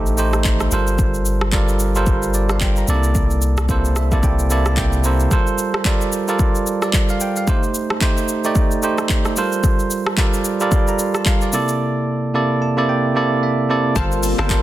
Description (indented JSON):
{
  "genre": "amapiano",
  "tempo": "111 BPM",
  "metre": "4/4",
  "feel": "swing 58% on 16ths",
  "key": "G minor",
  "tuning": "A4 = 440 Hz",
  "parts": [
    { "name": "bell-like tine electric piano", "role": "accompaniment", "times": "0.0-14.6 s", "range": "C3 to Bb5", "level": "-19 LUFS", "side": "right 2 dB", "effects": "none" },
    { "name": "punchy sub bass", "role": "bass", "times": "0.0-5.3 s", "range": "G1 to C2", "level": "-19 LUFS", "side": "left 1 dB", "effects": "none" },
    { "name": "deep house drum kit", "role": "drums", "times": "0.1-14.6 s", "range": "handclaps, hi-hat, kick drum, rim click, shaker", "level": "-19 LUFS", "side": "equal", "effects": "none" },
    { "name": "string machine, full ensemble", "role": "sustained chords", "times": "14.0-14.6 s", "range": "C3 to F4", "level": "-25 LUFS", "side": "left 7 dB", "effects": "phaser, ensemble chorus, sidechain pumping" },
    { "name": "analog pluck", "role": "stabs", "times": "14.0-14.5 s", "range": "Bb4 to A5", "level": "-26 LUFS", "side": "left 5 dB", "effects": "chorus, digital delay" },
    { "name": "hollow log drum bass", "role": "bass", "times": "14.0-14.6 s", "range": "G1", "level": "-22 LUFS", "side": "equal", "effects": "none" }
  ],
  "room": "light reverb, digital ambience",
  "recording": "dense, heavily limited modern master",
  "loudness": "-16 LUFS",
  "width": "side -14 dB against mid",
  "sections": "0.0-14.0 A section",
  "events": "tine electric piano fill 3.7-5.3, 12.3-14.0",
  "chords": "0.0 Am7b5; 0.7 Gm11; 2.9 C13; 5.3 Gm11; 7.5 Am7b5; 9.4 Gm11; 11.5 C13; 14.0 Gm11",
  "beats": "0.45 | 0.99 1.53 2.07 2.61 | 3.15 3.69 4.23 4.77 | 5.31 5.85 6.39 6.93 | 7.47 8.01 8.55 9.10 | 9.64 10.18 10.72 11.26 | 11.80 12.34 12.88 13.42 | 13.96 14.50"
}